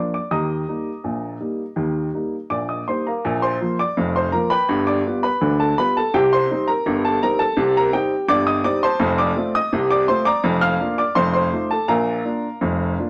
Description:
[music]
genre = ragtime piano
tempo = 83 BPM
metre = 2/4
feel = straight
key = Eb major, Bb major from 3.2 s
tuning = A4 = 440 Hz
[part]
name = warm upright piano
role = solo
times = 0.0-13.1 s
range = F1 to F6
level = -20 LUFS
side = equal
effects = none
[sound]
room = moderate studio ambience, RT60 0.4 s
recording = none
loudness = -20 LUFS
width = mono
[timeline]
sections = 0.0-3.2 A section; 3.2-13.1 B section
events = none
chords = 0.3 Eb; 3.2 Bb; 4.7 G7; 6.1 Cm; 9.0 F7; 10.4 Bb/F; 11.2 F7; 11.9 Bb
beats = | 0.31 1.05 | 1.78 2.51 | 3.24 3.97 | 4.69 5.41 | 6.13 6.85 | 7.57 8.29 | 9.01 9.72 | 10.45 11.17 | 11.90 12.63

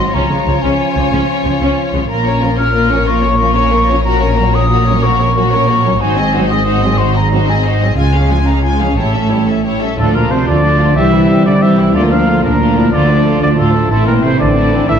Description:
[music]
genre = cinematic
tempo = 122 BPM (dotted quarters)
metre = 12/8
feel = straight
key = D minor from 10.0 s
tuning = A4 = 439 Hz
[part]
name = rich symphonic violin section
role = melody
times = 0.0-15.0 s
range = C4 to Ab5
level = -20 LUFS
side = left 4 dB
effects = none
[part]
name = concert flute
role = second line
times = 0.0-15.0 s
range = Eb5 to F6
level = -19 LUFS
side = left 2 dB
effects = none
[part]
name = warm symphonic violin section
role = second line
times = 0.0-15.0 s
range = A3 to Bb4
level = -23 LUFS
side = left 4 dB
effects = none
[part]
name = clear symphonic viola section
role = accompaniment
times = 0.0-15.0 s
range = D3 to E4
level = -22 LUFS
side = left 1 dB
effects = none
[part]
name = bright trombone section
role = sustained chords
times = 0.0-15.0 s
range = E3 to D4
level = -20 LUFS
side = right 2 dB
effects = none
[part]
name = rich symphonic cello section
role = bass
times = 0.0-15.0 s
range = Ab2 to F3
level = -17 LUFS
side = right 1 dB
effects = none
[part]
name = rich symphonic double bass section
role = bass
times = 0.0-15.0 s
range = Ab1 to D2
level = -16 LUFS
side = right 2 dB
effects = none
[part]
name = clear oboe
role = second line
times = 10.0-15.0 s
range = A4 to F5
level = -24 LUFS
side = equal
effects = none
[part]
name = dark clarinet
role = second line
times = 10.0-15.0 s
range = C4 to G4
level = -22 LUFS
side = left 2 dB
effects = none
[part]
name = dark French horn section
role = sustained chords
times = 10.0-15.0 s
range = A3 to F4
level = -20 LUFS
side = left 6 dB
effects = none
[part]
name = clear trumpet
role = stabs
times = 10.0-15.0 s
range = A4 to F5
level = -18 LUFS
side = right 1 dB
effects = none
[sound]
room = wet recital hall reverb, RT60 1.6 s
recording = dark, warm production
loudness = -10 LUFS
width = side -8 dB against mid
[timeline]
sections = 0.0-10.0 A section; 10.0-15.0 B section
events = none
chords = 0.1 Db; 2.1 Bbm; 4.0 Gb/Bb; 6.0 Ab7; 8.0 Db; 9.0 A7; 10.0 Dm; 11.0 C; 12.0 Bb/D; 12.9 Dm; 13.9 Am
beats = | 0.14 0.63 1.12 1.61 | 2.09 2.58 3.07 3.56 | 4.04 4.53 5.03 5.51 | 6.01 6.50 6.99 7.48 | 7.97 8.47 8.97 9.48 | 9.99 10.48 10.97 11.46 | 11.96 12.45 12.93 13.42 | 13.91 14.40 14.89

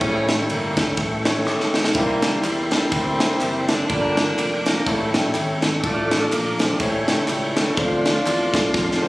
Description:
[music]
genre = uptempo gospel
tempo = 124 BPM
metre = 4/4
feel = swing 57% on 8ths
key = unclear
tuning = A4 = 439 Hz
[part]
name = warm horn section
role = melody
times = 0.0-9.1 s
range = C3 to F4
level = -24 LUFS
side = equal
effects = slapback echo
[part]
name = clear concert grand piano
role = accompaniment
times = 0.0-9.1 s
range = G2 to C#5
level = -26 LUFS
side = left 1 dB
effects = none
[part]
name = tonewheel organ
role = sustained chords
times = 0.0-9.1 s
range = A4 to D6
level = -27 LUFS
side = equal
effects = slow rotary speaker, chorus vibrato
[part]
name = fingered electric bass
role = bass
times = 0.0-9.1 s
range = F1 to F2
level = -27 LUFS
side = equal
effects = none
[part]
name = crisp fusion drum kit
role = drums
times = 0.0-9.1 s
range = kick drum, ride cymbal, snare drum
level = -22 LUFS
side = equal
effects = none
[part]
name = tambourine and handclaps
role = percussion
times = 1.9-9.1 s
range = none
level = -35 LUFS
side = left 1 dB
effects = none
[sound]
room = moderate large studio reverb, RT60 0.8 s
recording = recorded on a phone in the room, studio reverb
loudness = -18 LUFS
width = side -19 dB against mid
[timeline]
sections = 0.0-9.1 A section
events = drum fill 1.5-2.0, 8.7-9.1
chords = 0.0 A7; 2.0 C7; 3.9 Gm7; 4.9 A7; 5.8 Dm/A; 6.8 A7; 7.8 Dm7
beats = | 0.01 0.50 0.98 1.47 | 1.95 2.44 2.92 3.41 | 3.89 4.38 4.86 5.35 | 5.83 6.32 6.80 7.29 | 7.77 8.26 8.74

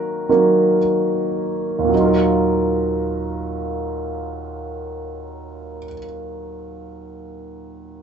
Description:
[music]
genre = pop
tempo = free time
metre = none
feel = none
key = Eb minor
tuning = A4 = 440 Hz
[part]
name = warm concert grand piano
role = accompaniment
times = 0.0-8.0 s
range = Eb2 to Bb4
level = -19 LUFS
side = right 2 dB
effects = none
[sound]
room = wet small room reverb, RT60 0.6 s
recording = band playing live in one room, nothing above 7.9 kHz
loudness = -17 LUFS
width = side -7 dB against mid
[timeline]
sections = 0.0-1.9 A section; 1.9-6.5 B section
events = slowing down 0.0-1.9; grand piano solo 0.0-1.9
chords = 0.0 Ebm; 1.9 Ebmadd9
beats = free time

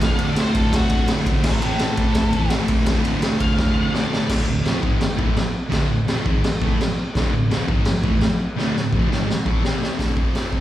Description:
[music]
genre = garage rock duo or trio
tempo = 168 BPM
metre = 4/4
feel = straight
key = unclear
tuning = A4 = 440 Hz
[part]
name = octave-fuzz lead guitar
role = melody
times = 0.0-4.3 s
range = E4 to F5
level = -28 LUFS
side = left 1 dB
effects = distortion, slapback echo
[part]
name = thick fuzz guitar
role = riff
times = 0.0-10.6 s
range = D2 to C4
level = -21 LUFS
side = equal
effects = distortion, slapback echo
[part]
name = raw garage drum kit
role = drums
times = 0.0-10.6 s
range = crash cymbal, hi-hat, kick drum, ride cymbal, snare drum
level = -20 LUFS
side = equal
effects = none
[sound]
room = small room ambience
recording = live gig heard through the venue's PA, recital hall reverb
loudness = -18 LUFS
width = side -13 dB against mid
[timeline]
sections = 0.0-4.3 A section; 4.3-10.0 B section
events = drum fill 3.6-4.3, 8.6-10.0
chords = 0.0 D; 1.4 A5; 2.9 D5; 9.6 C5; 10.0 D5; 10.2 F5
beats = | 0.02 0.38 0.73 1.09 | 1.44 1.80 2.15 2.51 | 2.87 3.22 3.58 3.93 | 4.29 4.64 5.00 5.36 | 5.71 6.07 6.42 6.78 | 7.14 7.49 7.85 8.21 | 8.56 8.92 9.28 9.63 | 9.99 10.35

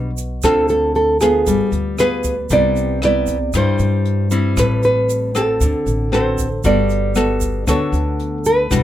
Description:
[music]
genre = bossa nova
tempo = 116 BPM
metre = 4/4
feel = straight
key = unclear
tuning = A4 = 443 Hz
[part]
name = nylon-string guitar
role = melody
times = 0.0-8.8 s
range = G#4 to D5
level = -18 LUFS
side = right 2 dB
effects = none
[part]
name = nylon-string guitar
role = accompaniment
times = 0.0-8.8 s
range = G2 to A4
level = -19 LUFS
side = left 2 dB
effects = none
[part]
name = upright bass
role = bass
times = 0.0-8.8 s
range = E1 to G2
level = -22 LUFS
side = equal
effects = none
[part]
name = jazz brush drum kit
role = drums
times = 0.2-8.8 s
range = hi-hat, kick drum, rim click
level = -25 LUFS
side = equal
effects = none
[part]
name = egg shaker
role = percussion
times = 0.2-8.8 s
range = none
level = -31 LUFS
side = right 10 dB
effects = none
[sound]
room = light reverb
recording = none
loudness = -14 LUFS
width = side -12 dB against mid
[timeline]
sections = 0.0-8.8 A section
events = none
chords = 0.4 Dm7; 1.5 G7b9; 2.5 Cmaj7; 4.6 Am7; 5.6 D7; 6.6 Gmaj9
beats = | 0.44 0.95 1.47 1.99 | 2.50 3.02 3.54 4.05 | 4.57 5.09 5.60 6.12 | 6.64 7.16 7.67 8.19 | 8.71

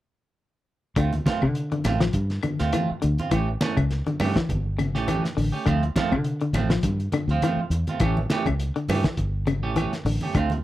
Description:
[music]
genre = afrobeat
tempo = 102 BPM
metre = 4/4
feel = swing 55% on 16ths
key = D minor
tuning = A4 = 441 Hz
[part]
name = electric guitar at the edge of break-up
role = arpeggios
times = 1.0-10.5 s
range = C3 to F3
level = -27 LUFS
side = left 4 dB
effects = tremolo
[part]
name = clean electric guitar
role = stabs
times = 1.0-10.6 s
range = E3 to G4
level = -28 LUFS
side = right 5 dB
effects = none
[part]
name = fingered electric bass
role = bass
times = 1.0-10.6 s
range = G1 to D3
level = -25 LUFS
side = equal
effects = none
[part]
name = cloth-damped thuddy drum kit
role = drums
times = 1.0-10.6 s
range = hi-hat, kick drum, snare drum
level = -27 LUFS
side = equal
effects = none
[part]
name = claves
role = percussion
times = 1.0-10.5 s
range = none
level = -38 LUFS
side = left 8 dB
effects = none
[part]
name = congas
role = percussion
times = 1.1-10.6 s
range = none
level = -31 LUFS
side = right 1 dB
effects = none
[sound]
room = studio ambience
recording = dry, close 1970s-style studio recording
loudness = -22 LUFS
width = side -14 dB against mid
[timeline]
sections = 1.0-10.6 A section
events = none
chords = 1.0 Dm7; 3.3 A7; 5.7 Dm7; 8.0 A7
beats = | 0.96 1.55 2.14 2.73 | 3.31 3.90 4.49 5.08 | 5.66 6.25 6.84 7.42 | 8.01 8.60 9.18 9.77 | 10.36

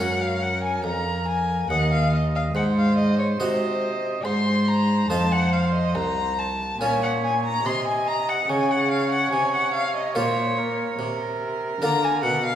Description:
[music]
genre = classical, baroque-style sonata movement with continuo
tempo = 71 BPM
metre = 4/4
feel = rubato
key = Bb minor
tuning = A4 = 440 Hz
[part]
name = dark violin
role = melody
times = 0.0-12.6 s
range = C5 to C6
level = -25 LUFS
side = left 3 dB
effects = none
[part]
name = clear oboe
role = second line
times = 0.0-12.6 s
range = Bb4 to Eb5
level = -29 LUFS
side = right 6 dB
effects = none
[part]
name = harpsichord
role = accompaniment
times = 0.0-12.6 s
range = C2 to Db5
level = -28 LUFS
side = right 1 dB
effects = none
[part]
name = rich cello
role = bass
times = 0.0-12.6 s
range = C2 to D3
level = -25 LUFS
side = equal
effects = none
[sound]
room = wet recital hall reverb, RT60 1.7 s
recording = heard from further back in the room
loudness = -20 LUFS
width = side -10 dB against mid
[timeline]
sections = 0.0-12.6 A section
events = none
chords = 0.0 Gb; 1.7 Cdim/Eb; 5.1 F5; 6.8 Bbm; 11.8 Bb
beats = 0.84 | 1.70 2.55 3.40 4.25 | 5.10 5.96 6.81 7.66 | 8.49 9.33 10.16 10.99 | 11.82

